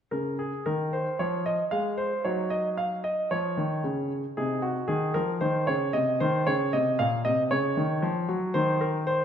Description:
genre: classical-period piano sonatina.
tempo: 114 BPM.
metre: 4/4.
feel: rubato.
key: Db major.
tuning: A4 = 440 Hz.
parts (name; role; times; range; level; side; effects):
clear concert grand piano; solo; 0.1-9.2 s; Bb2 to F5; -25 LUFS; equal; none.
room: moderate recital hall reverb, RT60 1.7 s.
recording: minimal, uncompressed stereo recording.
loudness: -25 LUFS.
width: side -8 dB against mid.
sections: 0.1-9.2 A section.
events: none.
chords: 0.1 Db; 2.3 Ebm7/Gb; 4.4 Cm; 6.5 Db; 8.6 N.C..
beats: | 0.12 0.66 1.20 1.73 | 2.26 2.78 3.32 3.85 | 4.38 4.90 5.43 5.95 | 6.48 7.00 7.53 8.04 | 8.56 9.08.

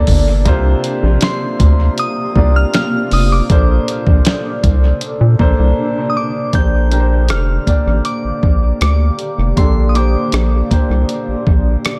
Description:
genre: contemporary R&B.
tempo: 79 BPM.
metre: 4/4.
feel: straight.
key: Bb major.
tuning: A4 = 440 Hz.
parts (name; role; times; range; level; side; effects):
glassy synth bell; melody; 0.0-12.0 s; C6 to G6; -26 LUFS; equal; chorus, tremolo, dub echo.
warm grand piano; accompaniment; 0.0-12.0 s; Bb2 to D5; -22 LUFS; equal; dub echo.
granular cloud pad; sustained chords; 0.0-12.0 s; C3 to A4; -28 LUFS; equal; built-in reverb.
rubbery square bass; bass; 0.0-11.8 s; F1 to Bb2; -15 LUFS; equal; none.
dusty soul sampler-style drum kit; drums; 0.1-12.0 s; hi-hat, kick drum, rim click, snare drum; -17 LUFS; equal; none.
room: digital ambience.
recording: echo-heavy mix.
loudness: -14 LUFS.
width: mono.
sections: 0.0-6.5 A section; 6.5-12.0 B section.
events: break 5.8-6.5.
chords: 0.5 C7sus4; 3.5 Bbmaj9; 6.5 Bb6.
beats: | 0.46 1.22 1.98 2.73 | 3.49 4.25 5.01 5.77 | 6.53 7.29 8.05 8.81 | 9.57 10.33 11.09 11.85.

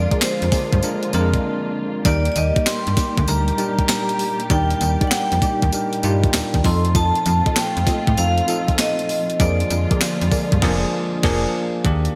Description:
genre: R&B, new jack swing.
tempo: 98 BPM.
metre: 4/4.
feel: swing 67% on 16ths.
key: Eb major.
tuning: A4 = 440 Hz.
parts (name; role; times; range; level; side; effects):
vibraphone with hard mallets; melody; 0.0-11.2 s; C5 to C6; -26 LUFS; equal; none.
bell-like tine electric piano; accompaniment; 0.0-12.2 s; Eb3 to Bb4; -27 LUFS; equal; none.
muted studio string section; sustained chords; 0.0-11.8 s; Bb2 to G4; -31 LUFS; equal; none.
slap-like FM bass; bass; 0.0-12.1 s; F1 to A2; -23 LUFS; equal; none.
funky polysynth comp; stabs; 0.1-11.5 s; Eb4 to Eb5; -33 LUFS; equal; chorus.
clean 12-bit digital drum machine; drums; 0.1-12.1 s; crash cymbal, handclaps, hi-hat, kick drum, snare drum, tambourine; -23 LUFS; equal; overdrive.
room: moderate lush hall reverb, RT60 1.9 s, digital ambience.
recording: bright 1980s-style digital production.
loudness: -19 LUFS.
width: mono.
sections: 0.0-11.8 A section.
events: break 1.4-2.0; band accent 10.6-11.8.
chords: 0.0 Bb7/F; 2.0 Ebmaj7; 6.6 F7; 9.4 Bb7/F.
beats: 0.21 0.83 1.44 | 2.05 2.66 3.27 3.89 | 4.50 5.11 5.72 6.34 | 6.95 7.56 8.17 8.79 | 9.40 10.01 10.62 11.23 | 11.85.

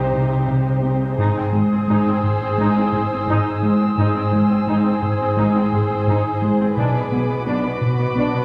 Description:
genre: cinematic.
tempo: 86 BPM.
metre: 4/4.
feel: straight.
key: unclear.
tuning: A4 = 442 Hz.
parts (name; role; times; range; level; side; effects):
muted studio violin section; melody; 0.0-8.4 s; B4 to C5; -30 LUFS; equal; none.
muted studio violin section; second line; 0.0-8.4 s; F#4 to Ab4; -29 LUFS; equal; none.
muted studio viola section; accompaniment; 0.0-8.4 s; F#3 to Eb4; -29 LUFS; equal; none.
muted studio cello section; bass; 0.0-8.4 s; Ab2 to C3; -31 LUFS; equal; none.
muted studio double bass section; bass; 0.0-8.2 s; Ab1 to C2; -30 LUFS; equal; none.
metallic inharmonic drone; drone; 0.0-8.4 s; Ab1 to C2; -31 LUFS; equal; none.
round analog bass; riff; 0.1-8.4 s; Ab2 to C4; -22 LUFS; equal; none.
muted studio violin section; texture; 1.2-8.4 s; B5 to Fb6; -32 LUFS; equal; none.
room: wet scoring stage reverb, RT60 1.8 s.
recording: none.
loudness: -19 LUFS.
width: mono.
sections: 0.0-8.4 A section.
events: none.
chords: 0.0 Cm; 1.2 Ab; 6.8 Bm.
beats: 0.49 | 1.18 1.88 2.58 3.28 | 3.98 4.67 5.37 6.07 | 6.76 7.46 8.16.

